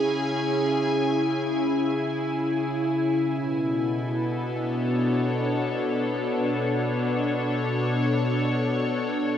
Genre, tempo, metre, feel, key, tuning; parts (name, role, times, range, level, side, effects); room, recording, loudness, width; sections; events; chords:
ambient; free time; B dorian; A4 = 439 Hz
evolving wavetable pad; solo; 0.0-9.4 s; B2 to G#5; -23 LUFS; left 1 dB; chorus, built-in reverb
wet huge ambient reverb, RT60 9.3 s; cassette tape; -23 LUFS; side -9 dB against mid
0.0-9.4 A section
0.0 C#m; 3.2 Bm7